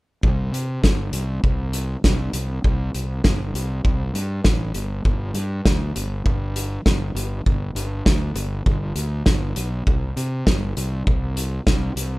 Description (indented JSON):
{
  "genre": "indie rock",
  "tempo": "100 BPM",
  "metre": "4/4",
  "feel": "straight",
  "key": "unclear",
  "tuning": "A4 = 439 Hz",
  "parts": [
    { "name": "fuzz fingered electric bass", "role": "bass", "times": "0.2-12.2 s", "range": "G1 to C3", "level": "-24 LUFS", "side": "equal", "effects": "overdrive" },
    { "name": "loose indie drum kit", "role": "drums", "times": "0.2-12.1 s", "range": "hi-hat, kick drum, snare drum", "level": "-20 LUFS", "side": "equal", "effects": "none" }
  ],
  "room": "little or no reverb",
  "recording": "rough home demo mix",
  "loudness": "-20 LUFS",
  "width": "side -20 dB against mid",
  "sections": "0.2-12.2 A section",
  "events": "none",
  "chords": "none"
}